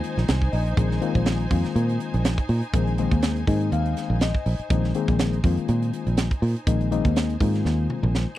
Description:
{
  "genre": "electric jazz fusion",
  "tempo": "122 BPM",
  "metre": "4/4",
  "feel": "swing 55% on 16ths",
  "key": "unclear",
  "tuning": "A4 = 440 Hz",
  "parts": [
    { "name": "reed electric piano", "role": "accompaniment", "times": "0.0-8.3 s", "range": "Eb3 to Ab5", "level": "-27 LUFS", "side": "left 7 dB", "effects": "none" },
    { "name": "clear symphonic string section", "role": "sustained chords", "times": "0.0-8.4 s", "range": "Eb4 to Ab5", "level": "-35 LUFS", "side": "equal", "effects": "none" },
    { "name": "tight funk drum kit", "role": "drums", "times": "0.0-8.3 s", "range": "hi-hat, kick drum, snare drum, toms", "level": "-25 LUFS", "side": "right 1 dB", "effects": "none" },
    { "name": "fingered electric bass", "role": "bass", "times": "0.2-8.2 s", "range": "Bb1 to Bb2", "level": "-22 LUFS", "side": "right 1 dB", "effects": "none" }
  ],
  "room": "little or no reverb",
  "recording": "dry, close 1970s-style studio recording",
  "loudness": "-20 LUFS",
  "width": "side -14 dB against mid",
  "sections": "0.0-8.4 A section",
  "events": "reed electric piano fill 0.0-0.8, 3.2-4.7; drum fill 7.7-8.4",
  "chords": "0.0 Bb9sus4",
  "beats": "0.28 | 0.77 1.26 1.76 2.25 | 2.74 3.23 3.72 4.21 | 4.70 5.20 5.69 6.18 | 6.67 7.16 7.65 8.14"
}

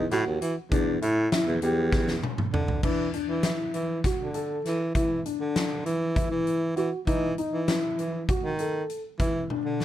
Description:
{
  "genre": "progressive instrumental, band music in an uneven meter",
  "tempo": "198 BPM (eighths)",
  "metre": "7/8",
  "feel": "straight",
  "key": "unclear",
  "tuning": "A4 = 440 Hz",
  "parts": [
    { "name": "breathy baritone saxophone", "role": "bass", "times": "0.0-9.8 s", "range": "D#2 to E3", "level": "-28 LUFS", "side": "right 1 dB", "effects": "none" },
    { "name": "dark grand piano", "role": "arpeggios", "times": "0.1-9.8 s", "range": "D4 to A4", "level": "-29 LUFS", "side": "left 2 dB", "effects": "none" },
    { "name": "huge arena drum kit", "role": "drums", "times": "0.1-9.8 s", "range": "crash cymbal, hi-hat, kick drum, snare drum, toms", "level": "-29 LUFS", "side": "equal", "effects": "none" }
  ],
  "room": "little or no reverb",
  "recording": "dark, warm production",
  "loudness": "-24 LUFS",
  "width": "side -12 dB against mid",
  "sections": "0.0-2.8 A section; 2.8-9.8 B section",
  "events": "drum fill 1.9-2.8, 9.5-9.8",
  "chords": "0.0 B7 (rootless); 0.7 Em7; 2.8 Dsus2; 7.1 D#(b5, no3); 9.2 Dsus2",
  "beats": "0.11 0.41 | 0.72 1.02 1.32 1.62 1.93 2.23 2.53 | 2.83 3.14 3.44 3.74 4.04 4.35 4.65 | 4.95 5.25 5.56 5.86 6.16 6.47 6.77 | 7.07 7.38 7.68 7.98 8.28 8.59 8.89 | 9.19 9.50 9.80"
}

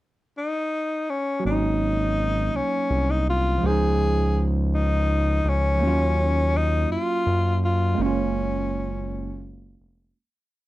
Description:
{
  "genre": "R&B",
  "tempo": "55 BPM (dotted quarters)",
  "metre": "6/8",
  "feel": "straight",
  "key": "unclear",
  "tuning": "A4 = 440 Hz",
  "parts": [
    { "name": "breathy tenor saxophone", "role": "melody", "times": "0.4-9.5 s", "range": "Db4 to Ab4", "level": "-25 LUFS", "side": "left 2 dB", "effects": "slapback echo" },
    { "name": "barky tine electric piano", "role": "accompaniment", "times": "1.4-10.2 s", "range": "F3 to C5", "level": "-27 LUFS", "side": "right 4 dB", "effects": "phaser" },
    { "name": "smooth synth bass", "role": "bass", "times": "1.5-10.1 s", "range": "F1 to Gb2", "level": "-23 LUFS", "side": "equal", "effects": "none" }
  ],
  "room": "light reverb",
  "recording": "dry, close 1970s-style studio recording",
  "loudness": "-21 LUFS",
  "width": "side -16 dB against mid",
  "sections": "0.0-1.4 pickup bar; 1.4-10.2 verse",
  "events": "fade-out 8.0-10.2",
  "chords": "0.0 N.C.; 1.4 Ab7sus4; 3.6 Dbmaj9; 5.8 Ebm9; 8.0 Gbmaj9",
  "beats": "0.35 | 1.44 2.53 | 3.62 4.71 | 5.80 6.89 | 7.98 9.07"
}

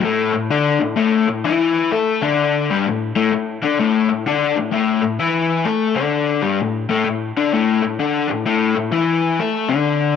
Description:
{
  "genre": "rock",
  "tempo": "128 BPM",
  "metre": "4/4",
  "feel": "swing 65% on 8ths",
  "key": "unclear",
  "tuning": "A4 = 440 Hz",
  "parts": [
    { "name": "raw garage guitar", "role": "solo", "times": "0.0-10.2 s", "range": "G2 to A4", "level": "-16 LUFS", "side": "left 6 dB", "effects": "overdrive" }
  ],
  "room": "moderate spring reverb, RT60 2.7 s",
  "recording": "none",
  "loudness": "-16 LUFS",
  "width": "side -7 dB against mid",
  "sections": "0.0-10.2 A section",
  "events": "none",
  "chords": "0.0 A5",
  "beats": "| 0.05 0.51 0.98 1.45 | 1.92 2.39 2.86 3.33 | 3.80 4.27 4.74 5.20 | 5.67 6.14 6.61 7.07 | 7.54 8.01 8.47 8.94 | 9.41 9.88"
}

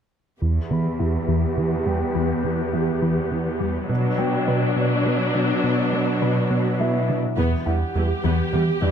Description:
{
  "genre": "cinematic",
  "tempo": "69 BPM (dotted quarters)",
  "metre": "6/8",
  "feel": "straight",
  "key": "E minor",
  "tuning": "A4 = 440 Hz",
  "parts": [
    { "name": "warm symphonic viola section", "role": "accompaniment", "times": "0.4-8.9 s", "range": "E3 to G4", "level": "-25 LUFS", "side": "equal", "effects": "low-pass filter" },
    { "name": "thumb-piano-like synth pluck", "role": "arpeggios", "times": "0.4-8.9 s", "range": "E3 to B4", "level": "-28 LUFS", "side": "left 6 dB", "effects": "chorus, low-pass filter, tape echo" },
    { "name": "smooth gliding synth bass", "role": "riff", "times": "0.4-8.9 s", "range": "E2 to B3", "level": "-24 LUFS", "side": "right 2 dB", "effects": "low-pass filter" },
    { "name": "warm symphonic cello section", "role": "bass", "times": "0.4-8.9 s", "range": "E2 to B2", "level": "-26 LUFS", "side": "right 1 dB", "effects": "none" },
    { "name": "warm concert grand piano", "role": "texture", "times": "0.7-8.9 s", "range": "D4 to B5", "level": "-32 LUFS", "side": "left 3 dB", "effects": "tape echo" }
  ],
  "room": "moderate scoring stage reverb, RT60 1.8 s",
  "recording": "none",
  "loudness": "-20 LUFS",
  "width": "side -8 dB against mid",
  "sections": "0.4-7.4 A section; 7.4-8.9 B section",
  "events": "filter sweep 0.4-7.4; build-up 7.4-8.9",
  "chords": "0.4 Em; 3.9 Bm; 7.4 Em",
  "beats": "| 0.42 1.29 | 2.16 3.03 | 3.90 4.77 | 5.64 6.50 | 7.38 8.24"
}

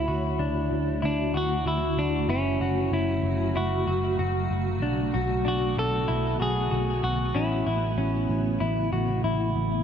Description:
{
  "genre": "dream pop",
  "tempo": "95 BPM",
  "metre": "4/4",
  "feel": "straight",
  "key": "A major",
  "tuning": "A4 = 440 Hz",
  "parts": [
    { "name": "clean electric guitar", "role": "melody", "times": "0.0-9.2 s", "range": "C#4 to A4", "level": "-30 LUFS", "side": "left 1 dB", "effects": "ping-pong delay" },
    { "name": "granular cloud pad", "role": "sustained chords", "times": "0.0-9.8 s", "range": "C#3 to F#4", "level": "-30 LUFS", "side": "right 1 dB", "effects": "built-in reverb" },
    { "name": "clean electric guitar", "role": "arpeggios", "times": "0.0-9.8 s", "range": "C#4 to F#4", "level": "-30 LUFS", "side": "left 2 dB", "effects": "wide subtle chorus, ping-pong delay" },
    { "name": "vintage muted picked electric bass", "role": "bass", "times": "0.0-9.8 s", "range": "F#1 to D2", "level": "-28 LUFS", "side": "equal", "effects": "none" }
  ],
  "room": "moderate plate reverb, RT60 3.6 s",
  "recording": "none",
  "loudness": "-24 LUFS",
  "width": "side -8 dB against mid",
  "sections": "0.0-9.8 A section",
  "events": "none",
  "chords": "0.0 Dadd9; 2.3 F#m; 4.8 Bm7; 7.3 Aadd9",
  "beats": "0.40 1.03 1.66 | 2.29 2.92 3.56 4.19 | 4.82 5.45 6.08 6.71 | 7.35 7.98 8.61 9.24"
}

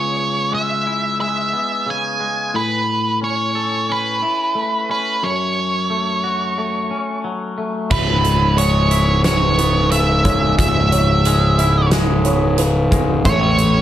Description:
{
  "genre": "post-rock",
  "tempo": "90 BPM",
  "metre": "4/4",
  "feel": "straight",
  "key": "C# minor",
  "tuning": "A4 = 441 Hz",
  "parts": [
    { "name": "octave-fuzz lead guitar", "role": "melody", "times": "0.0-13.8 s", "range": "B4 to G#5", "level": "-19 LUFS", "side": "right 2 dB", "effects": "distortion, slapback echo" },
    { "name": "twangy electric guitar", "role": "arpeggios", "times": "0.0-13.8 s", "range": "C#2 to A4", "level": "-23 LUFS", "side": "left 3 dB", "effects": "spring reverb, slapback echo" },
    { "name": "felt-muted upright piano", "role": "arpeggios", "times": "7.9-13.8 s", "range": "B4 to E5", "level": "-26 LUFS", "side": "right 3 dB", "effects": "slapback echo" },
    { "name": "fuzz picked electric bass", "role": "bass", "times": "7.9-13.8 s", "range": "C#1 to A1", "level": "-16 LUFS", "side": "equal", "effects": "overdrive" },
    { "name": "huge arena drum kit", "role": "drums", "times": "7.9-13.7 s", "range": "crash cymbal, hi-hat, kick drum, snare drum", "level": "-21 LUFS", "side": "equal", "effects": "none" }
  ],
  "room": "light reverb, small room reverb",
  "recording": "none",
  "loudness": "-15 LUFS",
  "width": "side -12 dB against mid",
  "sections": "0.0-7.9 A section; 7.9-13.8 A section",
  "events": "none",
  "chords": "0.0 C#m7; 2.5 Aadd9; 5.2 F#m; 7.9 C#m7; 13.3 A",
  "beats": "0.53 1.20 1.88 | 2.55 3.22 3.89 4.56 | 5.23 5.90 6.57 7.24 | 7.91 8.58 9.25 9.92 | 10.58 11.25 11.92 12.59 | 13.25"
}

